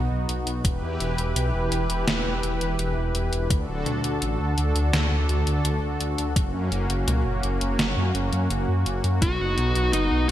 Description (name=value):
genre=synthwave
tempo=84 BPM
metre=4/4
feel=straight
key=unclear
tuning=A4 = 438 Hz
part: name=brassy analog pad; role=sustained chords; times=0.0-10.3 s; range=D3 to B4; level=-28 LUFS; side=equal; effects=chorus, tremolo, sidechain pumping
part: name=dark detuned saw bass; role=bass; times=0.0-10.3 s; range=D1 to F#2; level=-25 LUFS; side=equal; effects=none
part: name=detuned 8-bit digital drum machine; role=drums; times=0.3-10.3 s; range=hi-hat, snare drum, toms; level=-28 LUFS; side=equal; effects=overdrive, gated reverb
part: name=electronic kick drum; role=drums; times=0.6-9.4 s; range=none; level=-24 LUFS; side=equal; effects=overdrive
part: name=fuzz lead guitar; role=melody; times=9.2-10.3 s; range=D#4 to F#4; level=-24 LUFS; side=equal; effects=distortion
room=moderate lush hall reverb, RT60 3.0 s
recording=bright 1980s-style digital production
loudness=-22 LUFS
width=side -12 dB against mid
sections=0.0-10.3 A section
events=none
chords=0.0 B; 0.6 Em; 3.5 D; 6.4 F#; 9.2 B